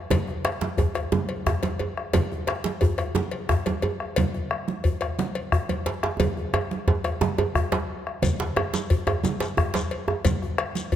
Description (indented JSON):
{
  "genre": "west african traditional, West African drum ensemble",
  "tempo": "118 BPM (dotted quarters)",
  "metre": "12/8",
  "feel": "straight",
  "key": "none",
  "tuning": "none",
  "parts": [
    { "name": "bombo", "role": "percussion", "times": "0.1-11.0 s", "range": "none", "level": "-27 LUFS", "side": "left 1 dB", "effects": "none" },
    { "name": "congas", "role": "percussion", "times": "0.1-10.9 s", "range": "none", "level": "-31 LUFS", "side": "right 5 dB", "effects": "none" },
    { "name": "cowbell", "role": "percussion", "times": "0.1-11.0 s", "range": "none", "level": "-32 LUFS", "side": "left 5 dB", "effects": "none" },
    { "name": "djembe", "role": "percussion", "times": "0.1-11.0 s", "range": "none", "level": "-31 LUFS", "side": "left 5 dB", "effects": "none" },
    { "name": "djembe", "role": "percussion", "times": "0.1-10.2 s", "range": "none", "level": "-28 LUFS", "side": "right 4 dB", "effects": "none" },
    { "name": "shekere", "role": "percussion", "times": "8.2-10.9 s", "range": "none", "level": "-34 LUFS", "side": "left 3 dB", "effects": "none" }
  ],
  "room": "wet concert hall reverb, RT60 1.8 s",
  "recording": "none",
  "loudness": "-23 LUFS",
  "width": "side -10 dB against mid",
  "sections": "0.0-8.2 A section; 8.2-11.0 B section",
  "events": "drum fill 6.2-8.2",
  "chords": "none"
}